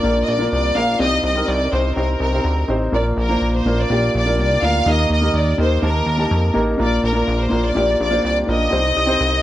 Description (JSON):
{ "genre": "piano-driven pop", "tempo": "124 BPM", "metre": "4/4", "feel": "straight", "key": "Bb major", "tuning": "A4 = 441 Hz", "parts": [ { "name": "clear studio violin section", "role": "melody", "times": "0.0-9.4 s", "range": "Bb4 to F5", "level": "-20 LUFS", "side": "equal", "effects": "none" }, { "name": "warm baby grand piano", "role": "accompaniment", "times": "0.0-9.4 s", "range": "Bb2 to A5", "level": "-20 LUFS", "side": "equal", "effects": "none" }, { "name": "chorused synth bass", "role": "bass", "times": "0.0-9.4 s", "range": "A1 to F2", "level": "-20 LUFS", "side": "equal", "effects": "none" } ], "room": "moderate recital hall reverb, RT60 1.7 s, small room reverb", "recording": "worn, warbling old tape, cassette tape, warbly pitch drift", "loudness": "-15 LUFS", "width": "side -13 dB against mid", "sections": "0.0-9.4 A section", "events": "none", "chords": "0.0 Bb; 1.0 Cm; 2.9 Bb; 4.9 Eb; 6.8 Bb; 8.7 Cm" }